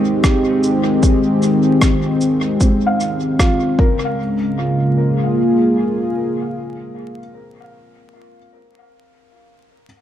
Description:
ambient dub; 76 BPM; 4/4; swing 55% on 16ths; Bb dorian; A4 = 440 Hz
warm analog pad; sustained chords; 0.0-8.0 s; Db3 to Ab4; -16 LUFS; equal; chorus
felt-muted upright piano; arpeggios; 0.0-9.9 s; C4 to F5; -23 LUFS; left 1 dB; low-pass filter, tape echo
electronic kick drum; drums; 0.2-4.0 s; -15 LUFS; equal; overdrive
electronic rim click and shaker; drums; 0.2-3.6 s; -25 LUFS; equal; dub echo
wet spring reverb, RT60 2.4 s; vinyl crackle; -14 LUFS; side -11 dB against mid
0.0-4.2 A section; 4.2-7.3 B section
filter sweep on felt piano 0.0-4.2
0.0 Fm9; 3.8 Bbm7

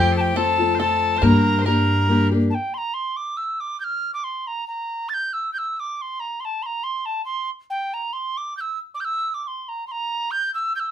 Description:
celtic folk, Celtic waltz; 139 BPM; 3/4; swing 54% on 8ths; G dorian; A4 = 439 Hz
wooden whistle; melody; 0.0-10.9 s; G5 to A6; -23 LUFS; right 1 dB
bluegrass banjo; second line; 0.0-2.3 s; G4 to C5; -31 LUFS; right 4 dB
loud bright bagpipes; second line; 0.0-2.3 s; G4 to C5; -27 LUFS; left 1 dB
fingerpicked steel-string acoustic guitar; accompaniment; 0.0-2.5 s; F3 to G4; -20 LUFS; left 2 dB
upright bass; bass; 0.0-2.5 s; F2 to G2; -22 LUFS; equal
wet studio ambience, RT60 0.5 s; minimal, uncompressed stereo recording; -21 LUFS; side -10 dB against mid
0.0-2.5 A section; 2.5-10.9 B section
0.0 F; 1.2 Gm; 2.5 N.C.

